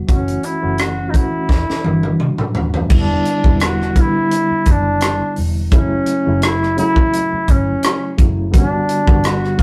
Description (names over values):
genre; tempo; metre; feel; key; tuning
lush 1970s-style soul; 85 BPM; 4/4; swing 54% on 16ths; E dorian; A4 = 438 Hz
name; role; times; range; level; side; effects
reed electric piano; accompaniment; 0.0-9.6 s; C#3 to F#4; -23 LUFS; equal; overdrive, fast tremolo
warm duduk; melody; 0.1-9.6 s; C#4 to F#4; -22 LUFS; equal; none
vintage muted fingered electric bass; bass; 0.1-9.6 s; D#1 to G1; -24 LUFS; equal; none
tight funk drum kit; drums; 0.1-9.6 s; crash cymbal, hi-hat, kick drum, rim click, snare drum, toms; -17 LUFS; equal; none
room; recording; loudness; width
moderate studio reverb, RT60 0.7 s; rough rehearsal-room recording; -16 LUFS; mono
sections
0.0-2.9 A section; 2.9-9.6 B section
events
drum fill 1.5-2.9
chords
0.1 F#m7; 1.5 Em9; 2.9 Em7; 5.7 F#m7; 8.5 Gmaj7